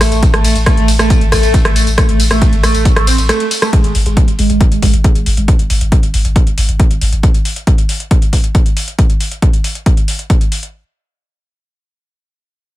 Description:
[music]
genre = driving peak-time techno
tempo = 137 BPM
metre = 4/4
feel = straight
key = unclear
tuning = A4 = 440 Hz
[part]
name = overdriven synth lead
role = riff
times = 0.0-5.5 s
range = G#3 to C4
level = -17 LUFS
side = right 2 dB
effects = lush chorus, sidechain pumping, digital delay
[part]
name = saturated sub bass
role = bass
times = 0.0-7.2 s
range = G#1 to A1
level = -15 LUFS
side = equal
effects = overdrive, sidechain pumping, low-pass filter
[part]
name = techno drum kit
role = drums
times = 0.0-10.7 s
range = hi-hat, ride cymbal, rim click, tambourine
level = -18 LUFS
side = equal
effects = none
[part]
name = electronic kick drum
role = drums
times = 0.2-10.4 s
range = none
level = -11 LUFS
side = equal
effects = none
[sound]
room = little or no reverb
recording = none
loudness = -10 LUFS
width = side -15 dB against mid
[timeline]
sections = 0.0-3.7 A section; 3.7-10.7 B section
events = drop 0.0-3.7; break 3.3-3.7; filter sweep on analog synth lead 3.7-5.5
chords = none

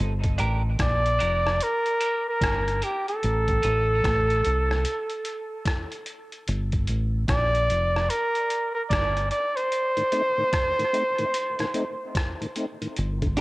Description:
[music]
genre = dub reggae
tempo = 74 BPM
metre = 4/4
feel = swing 63% on 16ths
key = G minor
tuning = A4 = 438 Hz
[part]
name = deep dub fingered electric bass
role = bass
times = 0.0-13.4 s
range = F1 to C2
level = -25 LUFS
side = equal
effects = none
[part]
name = tonewheel organ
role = accompaniment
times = 0.2-0.3, 10.0-13.3 s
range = G2 to Eb4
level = -32 LUFS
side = left 1 dB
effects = overdrive, chorus vibrato, slow rotary speaker, high-pass filter, cassette tape, dub echo
[part]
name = trip hop sampler-style drum kit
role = drums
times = 0.2-13.4 s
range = hi-hat, kick drum, rim click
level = -29 LUFS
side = equal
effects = cassette tape
[part]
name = clean electric guitar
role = accompaniment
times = 0.4-3.9, 13.4 s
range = C4 to Bb4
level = -33 LUFS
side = right 2 dB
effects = high-pass filter, cassette tape, dub echo
[part]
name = clear flugelhorn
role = melody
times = 0.8-12.6 s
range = G4 to D5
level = -24 LUFS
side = equal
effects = cassette tape, dub echo
[sound]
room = light reverb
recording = home recording on cassette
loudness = -22 LUFS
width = side -21 dB against mid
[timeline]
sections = 0.0-13.4 A section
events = break 0.0-9.7; filter sweep 0.0-6.5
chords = 0.0 Gm; 3.2 Am; 6.5 Gm; 9.7 Adim

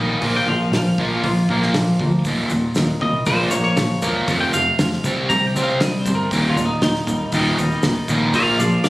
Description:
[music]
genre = indie rock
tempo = 118 BPM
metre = 4/4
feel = straight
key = Eb major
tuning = A4 = 440 Hz
[part]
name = twangy electric guitar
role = melody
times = 0.0-8.9 s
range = Eb4 to Bb5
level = -22 LUFS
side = equal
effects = digital delay
[part]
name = biting overdriven guitar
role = riff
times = 0.0-8.9 s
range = Eb2 to C4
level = -19 LUFS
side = equal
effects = lush chorus, digital delay
[part]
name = twangy electric guitar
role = riff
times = 0.0-8.9 s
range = Eb2 to G4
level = -27 LUFS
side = left 2 dB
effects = none
[part]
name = hollow-body short-scale picked electric bass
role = bass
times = 0.0-8.9 s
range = Eb1 to D2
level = -25 LUFS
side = equal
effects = none
[part]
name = loose indie drum kit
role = drums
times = 0.2-8.9 s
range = hi-hat, kick drum, snare drum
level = -26 LUFS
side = equal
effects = none
[part]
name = egg shaker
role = percussion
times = 2.2-8.9 s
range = none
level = -34 LUFS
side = left 1 dB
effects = none
[sound]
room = small room ambience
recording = recorded on a phone in the room, studio reverb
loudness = -16 LUFS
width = side -18 dB against mid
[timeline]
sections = 0.0-8.9 A section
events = clean electric guitar solo 0.0-8.9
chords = 0.2 Bb; 2.3 Eb; 3.3 Bb5; 4.3 F5; 5.0 C5; 6.3 Eb; 8.3 Bb

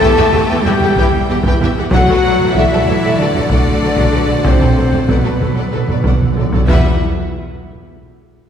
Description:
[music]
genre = cinematic, epic orchestral film score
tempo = 94 BPM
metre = 4/4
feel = straight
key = unclear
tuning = A4 = 440 Hz
[part]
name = rich symphonic violin section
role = melody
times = 0.0-7.0 s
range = B4 to A5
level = -25 LUFS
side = left 3 dB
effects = none
[part]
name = rich studio violin section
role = second line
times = 0.0-7.1 s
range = F#4 to G5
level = -26 LUFS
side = left 2 dB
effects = none
[part]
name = silver concert flute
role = second line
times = 0.0-7.0 s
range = B4 to A5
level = -24 LUFS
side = left 2 dB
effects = none
[part]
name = clear symphonic viola section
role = accompaniment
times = 0.0-7.0 s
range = E3 to B4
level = -22 LUFS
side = right 1 dB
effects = none
[part]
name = mellow French horn section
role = sustained chords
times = 0.0-7.0 s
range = B3 to A4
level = -18 LUFS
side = left 2 dB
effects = none
[part]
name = warm symphonic string section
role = sustained chords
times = 0.0-7.0 s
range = G3 to G5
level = -23 LUFS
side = equal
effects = none
[part]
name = clear symphonic double bass section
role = bass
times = 0.0-7.0 s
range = B1 to E2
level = -22 LUFS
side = right 2 dB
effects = none
[part]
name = rich symphonic cello section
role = bass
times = 0.0-7.0 s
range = B2 to A3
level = -22 LUFS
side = right 2 dB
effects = none
[part]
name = solo taiko drums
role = drums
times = 0.0-7.9 s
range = none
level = -16 LUFS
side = equal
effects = none
[part]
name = timpani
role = percussion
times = 1.9-7.0 s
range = E2 to B2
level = -22 LUFS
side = right 2 dB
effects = none
[sound]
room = wet scoring stage reverb, RT60 2.1 s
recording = heard from further back in the room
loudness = -11 LUFS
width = side -8 dB against mid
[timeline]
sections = 0.0-7.0 A section; 7.0-8.5 B section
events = timpani fill 1.9-7.0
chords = 0.0 Emadd9; 1.9 Bm7; 6.7 Emadd9; 7.0 N.C.

